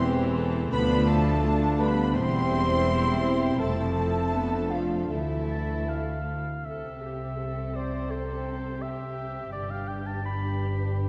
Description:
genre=cinematic, emotional film score for orchestra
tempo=83 BPM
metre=4/4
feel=rubato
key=C major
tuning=A4 = 440 Hz
part: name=dark studio violin section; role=melody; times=0.0-11.1 s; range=B4 to C6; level=-41 LUFS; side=equal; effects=none
part: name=dark clarinet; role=second line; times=0.0-6.3 s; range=E4 to C5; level=-37 LUFS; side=equal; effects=none
part: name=mellow hollow silver concert flute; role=second line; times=0.0-6.3 s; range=E5 to C6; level=-37 LUFS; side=equal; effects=none
part: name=warm studio violin section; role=second line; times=0.0-11.1 s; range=C4 to A4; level=-39 LUFS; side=equal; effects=none
part: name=warm studio viola section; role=accompaniment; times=0.0-11.1 s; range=E3 to C5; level=-35 LUFS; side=equal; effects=none
part: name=mellow French horn section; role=sustained chords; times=0.0-6.3 s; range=E3 to C4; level=-34 LUFS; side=equal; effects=none
part: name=warm studio cello section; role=bass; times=0.0-11.1 s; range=D2 to C3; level=-33 LUFS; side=equal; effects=none
part: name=warm studio double bass section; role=bass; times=0.0-11.1 s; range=E1 to D2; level=-34 LUFS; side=equal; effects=none
part: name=mellow oboe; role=second line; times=5.5-10.9 s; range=C5 to B5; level=-39 LUFS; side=equal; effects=none
room=wet concert hall reverb, RT60 1.9 s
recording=dark, warm production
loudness=-27 LUFS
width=mono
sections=0.0-6.6 A section; 6.6-11.1 B section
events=none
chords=0.0 C/E; 0.7 Dm; 2.1 C/E; 3.6 F; 5.1 Dmadd9; 6.6 C; 9.5 G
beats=0.01 | 0.72 1.44 2.15 2.87 | 3.60 4.34 5.11 5.89 | 6.65 7.37 8.10 8.81 | 9.52 10.23 10.95

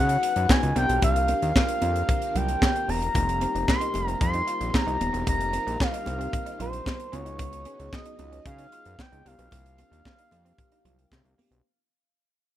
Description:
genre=early-eighties boogie funk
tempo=113 BPM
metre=4/4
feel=straight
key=unclear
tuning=A4 = 438 Hz
part: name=expressive synth lead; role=melody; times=0.0-11.4 s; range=C5 to C6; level=-28 LUFS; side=equal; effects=chorus
part: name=chorused polysynth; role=accompaniment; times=0.0-11.6 s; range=Bb3 to Cb5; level=-35 LUFS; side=left 5 dB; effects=none
part: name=string machine, violins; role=sustained chords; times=0.0-11.6 s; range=C3 to Gb4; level=-40 LUFS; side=equal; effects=ensemble chorus
part: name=fat analog bass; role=bass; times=0.0-11.6 s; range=Eb1 to Db3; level=-29 LUFS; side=equal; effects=none
part: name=tight funk drum kit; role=drums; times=0.1-11.6 s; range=handclaps, hi-hat, kick drum, snare drum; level=-24 LUFS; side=equal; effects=none
part: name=congas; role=percussion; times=0.5-11.5 s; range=none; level=-34 LUFS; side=right 2 dB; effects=none
part: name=electric guitar through a small old amp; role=riff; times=3.1-11.6 s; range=Bb3 to F4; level=-41 LUFS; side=right 4 dB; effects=lush chorus
room=light reverb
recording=rough home demo mix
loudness=-22 LUFS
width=side -12 dB against mid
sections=0.0-11.6 A section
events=fade-out 0.0-11.6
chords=0.0 Db9sus4; 0.8 C9sus4; 3.1 F9sus4; 7.1 Db9sus4; 9.3 C9sus4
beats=0.49 | 1.02 1.55 2.08 2.62 | 3.15 3.68 4.21 4.74 | 5.27 5.80 6.33 6.86 | 7.39 7.93 8.46 8.99 | 9.52 10.05 10.58 11.11

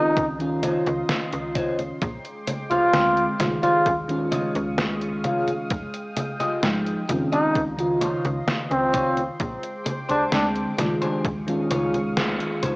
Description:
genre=vaporwave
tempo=65 BPM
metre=4/4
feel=straight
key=unclear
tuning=A4 = 442 Hz
part: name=warm flugelhorn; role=melody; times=0.0-10.5 s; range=C4 to F4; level=-23 LUFS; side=equal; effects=cassette tape, tape echo
part: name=mellow FM electric piano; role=accompaniment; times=0.0-12.8 s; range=Db3 to G5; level=-26 LUFS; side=equal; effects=analog chorus, cassette tape, analog delay
part: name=lush unison pad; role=sustained chords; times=0.0-12.8 s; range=Ab3 to Eb6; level=-34 LUFS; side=equal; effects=chorus, vintage 12-bit sampler grit, cassette tape
part: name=electric guitar at the edge of break-up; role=riff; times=0.0-12.8 s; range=D4 to F5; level=-30 LUFS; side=left 1 dB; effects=lush chorus, cassette tape, analog delay
part: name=slap-like FM bass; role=bass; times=0.2-12.7 s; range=Eb1 to D2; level=-32 LUFS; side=equal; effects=none
part: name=detuned 8-bit digital drum machine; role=drums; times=0.2-12.8 s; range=congas, hi-hat, snare drum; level=-28 LUFS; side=equal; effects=studio reverb
part: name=electronic kick drum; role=drums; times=0.2-12.8 s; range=none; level=-30 LUFS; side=equal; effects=studio reverb
room=wet spring reverb, RT60 2.0 s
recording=home recording on cassette, small speaker sound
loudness=-21 LUFS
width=side -26 dB against mid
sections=0.0-12.8 A section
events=band accent 12.2-12.6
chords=0.2 Dbmaj9; 2.0 Bb13; 3.9 Eb9sus4; 5.7 Fm9; 7.6 Dbmaj9; 9.4 Bb13; 11.2 Eb9sus4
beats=0.17 1.09 | 2.01 2.94 3.86 4.78 | 5.71 6.63 7.55 8.48 | 9.40 10.32 11.24 12.17

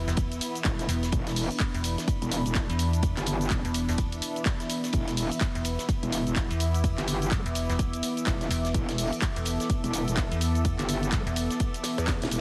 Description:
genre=bass house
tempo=126 BPM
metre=4/4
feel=swing 60% on 16ths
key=unclear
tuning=A4 = 439 Hz
part: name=sweeping resonant pad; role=sustained chords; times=0.0-12.4 s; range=E3 to A4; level=-38 LUFS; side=equal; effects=chorus, sidechain pumping
part: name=metallic FM bass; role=bass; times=0.0-11.5 s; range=E1 to E2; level=-31 LUFS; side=equal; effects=sidechain pumping
part: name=deep dark ambient pad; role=texture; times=0.0-12.4 s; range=B3 to D6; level=-38 LUFS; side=equal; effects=chorus, built-in reverb, sidechain pumping
part: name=house drum kit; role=drums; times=0.1-12.4 s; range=handclaps, hi-hat, shaker, snare drum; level=-36 LUFS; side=equal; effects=none
part: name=warm soul drum kit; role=drums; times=0.1-12.4 s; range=hi-hat, ride cymbal, snare drum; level=-44 LUFS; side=equal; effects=none
part: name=electronic kick drum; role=drums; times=0.2-12.2 s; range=none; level=-31 LUFS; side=equal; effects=none
part: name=metallic wobble bass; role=bass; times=0.6-12.4 s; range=E1 to E2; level=-32 LUFS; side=equal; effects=chorus, overdrive, sidechain pumping
room=light reverb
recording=heavily compressed radio sound, multiband compression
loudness=-28 LUFS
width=mono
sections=0.0-12.4 A section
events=drum fill 12.1-12.4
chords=0.0 E5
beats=0.17 0.65 | 1.12 1.60 2.08 2.55 | 3.03 3.51 3.98 4.46 | 4.93 5.41 5.89 6.36 | 6.84 7.32 7.79 8.27 | 8.74 9.22 9.70 10.17 | 10.65 11.12 11.60 12.08

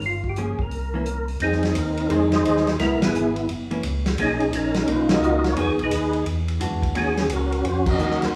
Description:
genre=soul jazz organ trio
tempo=173 BPM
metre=4/4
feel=swing 64% on 8ths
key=unclear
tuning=A4 = 440 Hz
part: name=tonewheel organ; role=bass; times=0.0-8.3 s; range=Gb1 to F#2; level=-29 LUFS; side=equal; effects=overdrive, slow rotary speaker
part: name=warm soul drum kit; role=drums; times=0.0-8.3 s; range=crash cymbal, hi-hat, kick drum, ride cymbal, snare drum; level=-30 LUFS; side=equal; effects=none
part: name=percussive tonewheel organ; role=melody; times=0.1-8.3 s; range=Cb4 to Eb5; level=-25 LUFS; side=equal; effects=slow rotary speaker, chorus vibrato
part: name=archtop guitar, miked and amplified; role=accompaniment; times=0.4-8.3 s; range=Eb3 to Ab4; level=-30 LUFS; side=equal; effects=none
room=wet large studio reverb, RT60 0.9 s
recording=band playing live in one room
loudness=-22 LUFS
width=mono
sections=0.0-1.4 A section; 1.4-8.4 B section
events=band accent 3.0, 5.0, 7.8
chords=0.0 Gm7b5; 0.7 C7b9; 1.4 Fm7; 2.8 Dbm7; 3.5 Gb7; 4.2 Bmaj9#11; 5.6 Fm7b5; 6.3 E9; 7.0 Ebm7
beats=| 0.02 0.36 0.71 1.06 | 1.40 1.75 2.10 2.44 | 2.79 3.14 3.48 3.83 | 4.18 4.52 4.87 5.22 | 5.56 5.91 6.26 6.60 | 6.95 7.30 7.64 7.99 | 8.34

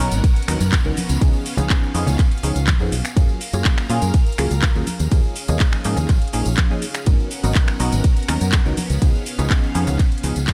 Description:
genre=filtered disco house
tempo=123 BPM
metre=4/4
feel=straight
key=G# dorian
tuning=A4 = 440 Hz
part: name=funky polysynth comp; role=accompaniment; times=0.0-10.4 s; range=E#3 to A#4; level=-29 LUFS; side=equal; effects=chorus, phaser, vintage 12-bit sampler grit, sidechain pumping
part: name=string machine, full ensemble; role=sustained chords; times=0.0-10.5 s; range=B3 to A#5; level=-33 LUFS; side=equal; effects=phaser, ensemble chorus, sidechain pumping
part: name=fingered electric bass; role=bass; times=0.0-10.5 s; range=G#1 to A#2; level=-23 LUFS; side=equal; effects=sidechain pumping
part: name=sub drop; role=sound effects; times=0.0-1.2 s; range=none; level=barely audible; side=none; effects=none
part: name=house drum kit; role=drums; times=0.1-10.5 s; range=cabasa, finger snaps, handclaps, hi-hat, ride cymbal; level=-29 LUFS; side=equal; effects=sidechain pumping on hats, sidechain pumping on cymbals, sidechain pumping on perc
part: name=tambourine and congas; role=percussion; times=0.1-10.5 s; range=none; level=-32 LUFS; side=equal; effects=sidechain pumping on perc
part: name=electronic kick drum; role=drums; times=0.2-10.5 s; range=none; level=-19 LUFS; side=equal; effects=none
room=little or no reverb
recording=dark, warm production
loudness=-19 LUFS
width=mono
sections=0.0-10.5 A section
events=impact 0.0-1.2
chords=0.0 G#m11 (rootless); 1.0 C#7; 3.2 F#maj7; 4.9 D#9sus4; 7.1 G#m11; 8.8 C#7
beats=0.24 0.72 | 1.21 1.70 2.19 2.68 | 3.16 3.65 4.14 4.63 | 5.12 5.60 6.09 6.58 | 7.07 7.55 8.04 8.53 | 9.02 9.51 9.99 10.48

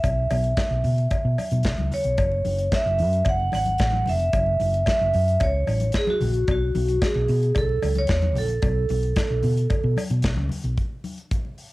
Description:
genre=disco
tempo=112 BPM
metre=4/4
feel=straight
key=unclear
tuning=A4 = 440 Hz
part: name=vibraphone with hard mallets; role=melody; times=0.0-9.9 s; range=F#4 to F#5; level=-24 LUFS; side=right 1 dB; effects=auto-pan, cassette tape
part: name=hollow-body short-scale fingered electric bass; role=bass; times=0.0-10.8 s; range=F1 to B2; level=-23 LUFS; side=equal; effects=none
part: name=modern studio drum kit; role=drums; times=0.0-11.7 s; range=hi-hat, kick drum, snare drum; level=-26 LUFS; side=equal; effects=cassette tape
part: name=congas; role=percussion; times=0.0-11.6 s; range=none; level=-34 LUFS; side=left 3 dB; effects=none
part: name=cowbell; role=percussion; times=0.0-10.4 s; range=none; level=-36 LUFS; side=left 3 dB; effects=none
room=small room reverb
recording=home recording on cassette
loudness=-20 LUFS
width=side -19 dB against mid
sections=0.0-10.8 A section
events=none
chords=0.0 Bsus4; 2.2 F#7(no3); 6.5 B7(no3); 10.8 N.C.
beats=| 0.04 0.57 1.11 1.65 | 2.18 2.72 3.26 3.79 | 4.33 4.87 5.41 5.94 | 6.48 7.01 7.55 8.09 | 8.63 9.16 9.70 10.24 | 10.78 11.31

